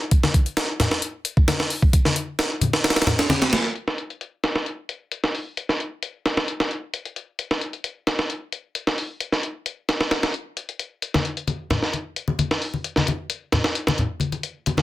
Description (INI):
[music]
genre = breakbeat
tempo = 132 BPM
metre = 4/4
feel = straight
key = none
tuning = none
[part]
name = breakbeat sampler-style drum kit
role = drums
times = 0.1-14.8 s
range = hi-hat, kick drum, snare drum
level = -21 LUFS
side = equal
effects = low-pass filter on hats, low-pass filter on snare, low-pass filter on kick
[part]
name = congas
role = percussion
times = 0.2-3.4, 11.1-14.8 s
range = none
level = -24 LUFS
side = left 2 dB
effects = none
[sound]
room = moderate studio reverb, RT60 0.5 s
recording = dense, heavily limited modern master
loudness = -21 LUFS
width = side -15 dB against mid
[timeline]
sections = 0.0-3.8 A section; 3.8-14.8 B section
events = none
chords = none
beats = | 0.12 0.57 1.03 1.48 | 1.94 2.39 2.84 3.30 | 3.75 4.21 4.66 5.12 | 5.57 6.03 6.48 6.93 | 7.39 7.84 8.30 8.75 | 9.21 9.66 10.12 10.57 | 11.03 11.48 11.94 12.39 | 12.84 13.30 13.75 14.21 | 14.66